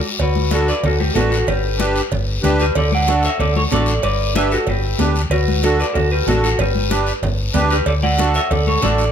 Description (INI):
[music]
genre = latin, cumbia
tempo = 188 BPM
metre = 4/4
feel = straight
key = D major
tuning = A4 = 440 Hz
[part]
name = electric guitar through a small old amp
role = melody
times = 0.2-9.1 s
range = F#4 to F#5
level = -20 LUFS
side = equal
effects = spring reverb
[part]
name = hollow-body short-scale fingered electric bass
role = bass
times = 0.2-9.1 s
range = G1 to D2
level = -19 LUFS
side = equal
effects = none
[part]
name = congas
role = percussion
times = 0.2-9.0 s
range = none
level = -25 LUFS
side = left 3 dB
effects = none
[part]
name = cowbell and timbales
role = percussion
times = 0.2-9.0 s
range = none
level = -27 LUFS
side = right 8 dB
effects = none
[part]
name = guiro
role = percussion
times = 0.2-9.1 s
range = none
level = -27 LUFS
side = left 6 dB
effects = none
[part]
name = accordion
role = accompaniment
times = 0.5-9.0 s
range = D4 to B4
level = -22 LUFS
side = right 2 dB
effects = light tremolo tuning
[sound]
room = light reverb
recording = close, detailed microphones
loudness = -15 LUFS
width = side -8 dB against mid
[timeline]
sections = 0.2-9.1 A section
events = drum fill 0.0; band accent 0.0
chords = 0.2 D; 1.5 G; 2.8 D; 4.0 G; 5.3 D; 6.6 G; 7.9 D